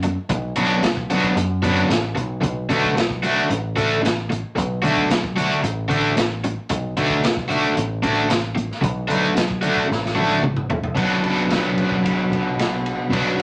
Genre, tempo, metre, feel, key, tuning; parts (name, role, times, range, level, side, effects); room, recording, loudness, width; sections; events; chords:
psychedelic rock; 112 BPM; 4/4; straight; B minor; A4 = 441 Hz
cranked stack guitar; riff; 0.0-13.4 s; B2 to F#4; -22 LUFS; equal; overdrive, harmonic tremolo
overdriven picked electric bass; bass; 0.0-13.4 s; A1 to F#2; -29 LUFS; equal
crunchy breakbeat drum kit; drums; 0.0-13.4 s; crash cymbal, hi-hat, kick drum, ride cymbal, snare drum, toms; -27 LUFS; equal
wet studio reverb, RT60 0.5 s; -21 LUFS; mono
0.0-11.0 A section; 11.0-13.4 B section
drum fill 9.9-11.0
0.0 Bm